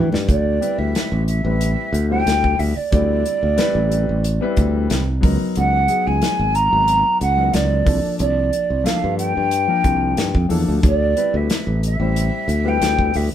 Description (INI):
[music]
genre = electric jazz fusion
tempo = 91 BPM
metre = 4/4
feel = straight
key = unclear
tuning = A4 = 440 Hz
[part]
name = warm concert grand piano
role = accompaniment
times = 0.0-13.3 s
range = F3 to D5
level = -25 LUFS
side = left 4 dB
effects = none
[part]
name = modern bright fingered electric bass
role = bass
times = 0.0-13.3 s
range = G#1 to E3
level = -20 LUFS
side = equal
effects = none
[part]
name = modern studio drum kit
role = drums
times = 0.1-13.3 s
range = hi-hat, kick drum, snare drum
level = -21 LUFS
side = equal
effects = none
[part]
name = breathy mellow jazz flute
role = melody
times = 0.3-13.3 s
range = D5 to A#5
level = -20 LUFS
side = right 1 dB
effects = none
[sound]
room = moderate studio reverb, RT60 0.6 s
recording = band playing live in one room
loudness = -16 LUFS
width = side -10 dB against mid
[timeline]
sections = 0.3-13.3 A section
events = drum fill 0.0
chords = 0.3 D13sus4; 5.2 C#13sus4; 7.9 C13sus4; 10.8 D13sus4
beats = | 0.29 0.95 1.61 2.27 | 2.92 3.58 4.24 4.90 | 5.56 6.22 6.88 7.54 | 8.19 8.85 9.51 10.17 | 10.83 11.49 12.15 12.81